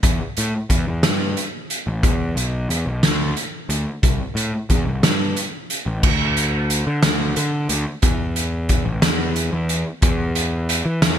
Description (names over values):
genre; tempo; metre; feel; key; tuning
indie rock; 60 BPM (dotted quarters); 6/8; straight; unclear; A4 = 440 Hz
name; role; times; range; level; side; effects
fuzz picked electric bass; bass; 0.0-11.2 s; A1 to E3; -22 LUFS; equal; overdrive
loose indie drum kit; drums; 0.0-11.2 s; crash cymbal, hi-hat, kick drum, snare drum; -19 LUFS; equal; gated reverb
room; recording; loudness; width
little or no reverb; bright 1980s-style digital production; -18 LUFS; side -9 dB against mid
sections
0.0-6.0 A section; 6.0-11.2 B section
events
none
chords
none